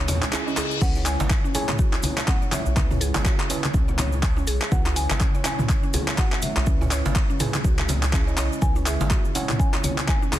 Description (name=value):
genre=afro house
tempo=123 BPM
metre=4/4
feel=swing 58% on 16ths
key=C# minor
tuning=A4 = 440 Hz
part: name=marimba with medium mallets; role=melody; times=0.0-10.4 s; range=E5 to G#5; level=-34 LUFS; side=left 1 dB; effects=dub echo
part: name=ethereal airy pad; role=sustained chords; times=0.0-10.4 s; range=C#3 to C#5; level=-35 LUFS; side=right 1 dB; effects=ensemble chorus, built-in reverb, sidechain pumping
part: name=mallet-like synth pluck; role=arpeggios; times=0.0-10.4 s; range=C#4 to C#5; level=-35 LUFS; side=equal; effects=chorus, sidechain pumping, dub echo
part: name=round analog bass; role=bass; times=0.0-9.1 s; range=G#1 to E2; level=-25 LUFS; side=equal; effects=tube saturation, sidechain pumping
part: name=reverse cymbal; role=sound effects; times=0.2-0.8 s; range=none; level=-32 LUFS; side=left 6 dB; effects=none
part: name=deep house drum kit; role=drums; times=0.1-10.4 s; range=crash cymbal, handclaps, hi-hat, toms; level=-27 LUFS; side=left 1 dB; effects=none
part: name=cabasa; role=percussion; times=0.1-10.4 s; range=none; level=-37 LUFS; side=right 1 dB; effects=none
part: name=congas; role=percussion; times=0.1-10.4 s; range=none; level=-31 LUFS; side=left 2 dB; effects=none
part: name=djembe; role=percussion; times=0.1-10.4 s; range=none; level=-33 LUFS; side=right 2 dB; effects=none
part: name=mellow tine electric piano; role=stabs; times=0.3-10.4 s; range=C#4 to D#5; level=-34 LUFS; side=right 5 dB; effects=sidechain pumping, dub echo
part: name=electronic kick drum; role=drums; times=0.8-10.2 s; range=none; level=-22 LUFS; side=equal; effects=none
room=light reverb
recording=dense, heavily limited modern master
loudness=-20 LUFS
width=side -13 dB against mid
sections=0.0-10.4 A section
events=reverse cymbal 0.2-0.8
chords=0.0 C#m7